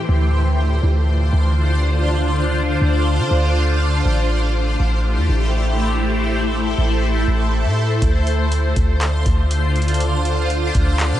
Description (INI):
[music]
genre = hip hop, atmospheric cloud-rap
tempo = 121 BPM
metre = 4/4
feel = half-time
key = D minor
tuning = A4 = 440 Hz
[part]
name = shimmering ambient pad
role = sustained chords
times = 0.0-11.2 s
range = D3 to C5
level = -20 LUFS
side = equal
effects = chorus, built-in reverb, phaser, sidechain pumping
[part]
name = warm 808-style bass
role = bass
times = 0.1-11.2 s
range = A1 to D3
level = -17 LUFS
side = equal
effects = none
[part]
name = booming analog drum machine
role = drums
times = 8.0-11.1 s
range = handclaps, hi-hat, kick drum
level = -21 LUFS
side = equal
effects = none
[sound]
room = light reverb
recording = nothing above 10.8 kHz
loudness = -16 LUFS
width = side -12 dB against mid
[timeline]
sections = 0.1-11.2 A section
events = none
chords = 0.1 Dm7; 4.1 Am7; 8.0 Dm7